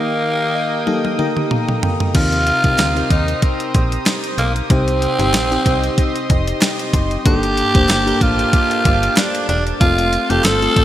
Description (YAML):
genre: 1980s-style pop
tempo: 94 BPM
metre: 4/4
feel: swing 55% on 16ths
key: unclear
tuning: A4 = 440 Hz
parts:
  - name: growling tenor saxophone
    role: melody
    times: 0.0-10.8 s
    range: Bb3 to A4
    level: -19 LUFS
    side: right 1 dB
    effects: none
  - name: FM electric piano with soft pad layer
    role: accompaniment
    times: 0.0-10.8 s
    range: G2 to C6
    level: -21 LUFS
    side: left 2 dB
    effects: chorus, tremolo
  - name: chorused pulse-width pad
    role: sustained chords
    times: 0.0-10.8 s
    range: Bb3 to Eb6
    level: -25 LUFS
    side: right 2 dB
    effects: none
  - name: clean 12-bit digital drum machine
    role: drums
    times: 0.9-10.8 s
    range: crash cymbal, hi-hat, kick drum, snare drum, toms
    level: -18 LUFS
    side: equal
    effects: overdrive
  - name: slap-like FM bass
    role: bass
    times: 2.1-10.8 s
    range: E1 to Eb2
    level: -20 LUFS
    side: equal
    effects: none
  - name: group handclap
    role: percussion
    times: 2.8-10.6 s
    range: none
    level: barely audible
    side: none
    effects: none
room: moderate lush hall reverb, RT60 2.6 s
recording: bright 1980s-style digital production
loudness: -14 LUFS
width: side -12 dB against mid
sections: 0.0-2.1 A section; 2.1-10.8 B section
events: break 0.0-2.1; FM electric piano fill 0.2-2.1, 6.0-7.3; drum fill 0.9-2.1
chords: 0.0 Eb; 2.1 Eb6; 4.7 Cm; 7.3 Gmadd9; 9.8 F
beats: 0.23 0.87 1.51 | 2.15 2.79 3.42 4.06 | 4.70 5.34 5.98 6.62 | 7.25 7.89 8.53 9.17 | 9.81 10.45